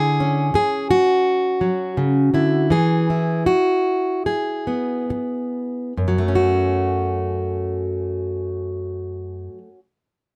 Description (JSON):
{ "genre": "folk, solo fingerstyle acoustic guitar", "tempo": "68-86 BPM", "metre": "4/4", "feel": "rubato", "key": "F# minor", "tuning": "A4 = 440 Hz", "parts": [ { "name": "fingerpicked plugged-in steel-string acoustic guitar", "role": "solo", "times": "0.0-9.8 s", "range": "F#2 to G#4", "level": "-21 LUFS", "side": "equal", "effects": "none" } ], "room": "little or no reverb", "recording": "close, detailed microphones", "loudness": "-21 LUFS", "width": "mono", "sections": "0.0-6.0 A section; 6.0-9.4 B section", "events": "slowing down 0.0-6.0", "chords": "0.0 C#madd11; 2.7 E; 6.0 F#m" }